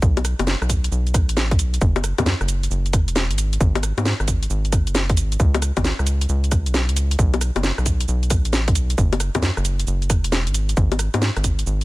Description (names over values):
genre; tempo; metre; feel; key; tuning
UK garage, two-step garage; 134 BPM; 4/4; swing 66% on 16ths; unclear; A4 = 440 Hz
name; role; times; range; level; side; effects
rubbery square bass; bass; 0.0-11.8 s; E1 to G#2; -21 LUFS; equal; none
electronic kick drum; drums; 0.0-11.6 s; none; -19 LUFS; equal; none
garage drum kit; drums; 0.0-11.8 s; bongos, cabasa, hi-hat, rim click, snare drum; -23 LUFS; left 1 dB; none
room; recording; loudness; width
little or no reverb; none; -18 LUFS; side -19 dB against mid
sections
0.0-11.8 A section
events
none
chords
none